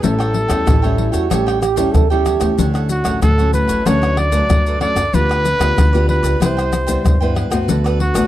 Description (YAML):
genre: samba and choro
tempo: 94 BPM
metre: 4/4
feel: straight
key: D major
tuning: A4 = 438 Hz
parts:
  - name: warm trumpet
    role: melody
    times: 0.0-8.3 s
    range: F#4 to D5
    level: -20 LUFS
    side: equal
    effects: none
  - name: cavaquinho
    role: accompaniment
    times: 0.0-8.3 s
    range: D4 to G5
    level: -27 LUFS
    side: right 7 dB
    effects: none
  - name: nylon-string guitar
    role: accompaniment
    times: 0.0-8.3 s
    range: G2 to G4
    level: -21 LUFS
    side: left 3 dB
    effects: none
  - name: upright bass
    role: bass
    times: 0.0-8.3 s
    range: A1 to G2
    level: -20 LUFS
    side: equal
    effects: none
  - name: maracas, surdo, pandeiro and tamborim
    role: percussion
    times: 0.0-8.3 s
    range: none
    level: -17 LUFS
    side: left 1 dB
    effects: none
  - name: warm trombone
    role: second line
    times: 0.7-2.7 s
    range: E4 to A4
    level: -20 LUFS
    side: right 10 dB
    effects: none
room: small room ambience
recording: dry, close 1970s-style studio recording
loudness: -13 LUFS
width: side -13 dB against mid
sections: 0.0-8.3 A section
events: none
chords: 0.0 A7; 2.6 Dmaj7; 3.9 Bm9/D; 5.1 G7/D; 6.4 Cmaj7; 7.7 D6